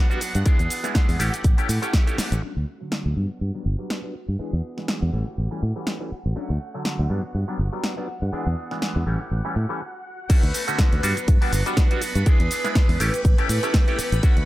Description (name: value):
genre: filtered disco house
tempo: 122 BPM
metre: 4/4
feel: swing 56% on 16ths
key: unclear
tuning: A4 = 441 Hz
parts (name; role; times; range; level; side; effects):
- overdriven clav; accompaniment; 0.0-14.4 s; D3 to G4; -29 LUFS; equal; phaser, sidechain pumping, low-pass filter
- string machine, full ensemble; sustained chords; 0.0-14.5 s; B4 to B5; -34 LUFS; equal; phaser, ensemble chorus, sidechain pumping, low-pass filter
- electric guitar with an envelope filter; riff; 0.0-14.5 s; E3 to G#4; -34 LUFS; right 2 dB; vintage 12-bit sampler grit, sidechain pumping, low-pass filter
- punchy analog drum machine; drums; 0.1-14.5 s; crash cymbal, hi-hat, shaker, snare drum; -28 LUFS; equal; none
- maracas; percussion; 0.1-2.4, 6.4-9.8 s; none; -44 LUFS; left 1 dB; none
- fingered electric bass; bass; 0.4-14.4 s; G1 to A2; -23 LUFS; equal; tube saturation, sidechain pumping, low-pass filter
- electronic kick drum; drums; 0.5-2.0, 10.3-14.3 s; none; -18 LUFS; equal; none
room: digital ambience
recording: none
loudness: -20 LUFS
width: side -16 dB against mid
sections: 0.0-2.4 A section; 2.4-10.3 B section; 10.3-14.5 C section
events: drum fill 2.2; band accent 2.2; filter sweep 2.4-10.3; break 9.8-10.3; drop 10.3-14.5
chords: 0.5 E7; 1.2 A7; 2.4 Dmaj7; 3.2 Gmaj7; 4.4 E7; 5.1 A7; 6.4 Dmaj7; 7.1 Gmaj7; 8.3 E7; 9.1 A7; 10.3 Dmaj7; 11.0 Gmaj7; 12.3 E7; 13.0 A7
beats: | 0.46 0.95 1.45 1.94 | 2.43 2.92 3.41 3.90 | 4.40 4.89 5.38 5.87 | 6.36 6.86 7.35 7.84 | 8.33 8.82 9.31 9.81 | 10.30 10.79 11.28 11.77 | 12.27 12.76 13.25 13.74 | 14.23